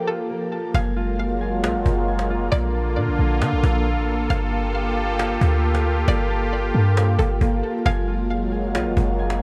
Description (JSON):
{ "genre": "hip hop, atmospheric cloud-rap", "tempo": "135 BPM", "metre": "4/4", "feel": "half-time", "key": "unclear", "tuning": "A4 = 443 Hz", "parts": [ { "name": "sweeping resonant pad", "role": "sustained chords", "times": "0.0-9.4 s", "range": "D3 to A4", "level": "-27 LUFS", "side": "equal", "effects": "chorus" }, { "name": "concert harp", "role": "arpeggios", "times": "0.0-9.4 s", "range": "Bb3 to A5", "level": "-31 LUFS", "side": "equal", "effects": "low-pass filter, digital delay" }, { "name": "string-like resonator pluck", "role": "melody", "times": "0.1-8.3 s", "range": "A4 to F5", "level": "-34 LUFS", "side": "equal", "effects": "chorus, low-pass filter, digital delay" }, { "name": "clean 808-style bass", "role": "bass", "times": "0.7-9.4 s", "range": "Gb1 to D3", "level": "-24 LUFS", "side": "equal", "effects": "none" }, { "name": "cajon", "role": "drums", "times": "0.7-9.4 s", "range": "none", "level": "-32 LUFS", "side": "equal", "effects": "none" } ], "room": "light reverb, studio reverb", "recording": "none", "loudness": "-22 LUFS", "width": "mono", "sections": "0.7-9.4 A section", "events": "break 0.0-0.7", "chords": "0.0 Gm9; 0.7 Gbmaj9; 2.5 Bbmaj7; 4.3 Gm9; 7.9 Gbmaj9" }